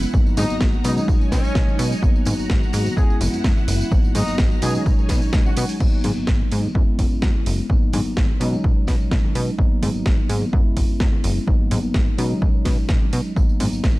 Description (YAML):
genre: filtered disco house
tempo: 127 BPM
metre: 4/4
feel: straight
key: G# minor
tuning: A4 = 441 Hz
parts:
  - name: mellow tine electric piano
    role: accompaniment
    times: 0.0-14.0 s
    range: F#3 to E4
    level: -26 LUFS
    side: equal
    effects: phaser, vintage 12-bit sampler grit, sidechain pumping, low-pass filter
  - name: string machine, full ensemble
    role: sustained chords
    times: 0.0-5.8 s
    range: D#4 to A#5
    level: -31 LUFS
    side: equal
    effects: ensemble chorus, sidechain pumping, low-pass filter
  - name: plucky analog bass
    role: bass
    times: 0.0-14.0 s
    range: F#1 to B2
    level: -24 LUFS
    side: equal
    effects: sidechain pumping, low-pass filter
  - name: house drum kit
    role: drums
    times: 0.0-14.0 s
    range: crash cymbal, hi-hat, snare drum, tambourine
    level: -28 LUFS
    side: equal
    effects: sidechain pumping on perc, sidechain pumping on hats, sidechain pumping on cymbals
  - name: tambourine and congas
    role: percussion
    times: 0.0-13.9 s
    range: none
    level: -32 LUFS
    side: left 1 dB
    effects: sidechain pumping on perc, low-pass filter on perc
  - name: electronic kick drum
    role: drums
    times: 0.1-13.9 s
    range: none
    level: -18 LUFS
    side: equal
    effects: none
  - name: warm horn section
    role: melody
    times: 0.4-5.7 s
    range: C#4 to G#4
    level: -30 LUFS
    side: equal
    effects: vintage 12-bit sampler grit, sidechain pumping, low-pass filter, digital delay
room: little or no reverb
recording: dark, warm production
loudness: -17 LUFS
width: side -19 dB against mid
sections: 0.0-5.8 A section; 5.8-14.0 B section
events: drop 0.0-5.8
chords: 0.1 G#m9; 0.8 B69; 2.0 G#m9; 3.0 F#7sus4; 3.9 G#m9; 4.6 B69; 5.8 G#m9; 6.8 F#7sus4; 7.7 G#m9; 8.4 B69; 9.6 G#m9; 10.5 F#7sus4; 11.5 G#m9; 12.2 B69; 13.4 G#m9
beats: | 0.14 0.61 1.08 1.56 | 2.03 2.50 2.97 3.44 | 3.92 4.39 4.86 5.33 | 5.81 6.28 6.75 7.22 | 7.70 8.17 8.64 9.12 | 9.59 10.06 10.53 11.01 | 11.48 11.95 12.42 12.89 | 13.37 13.84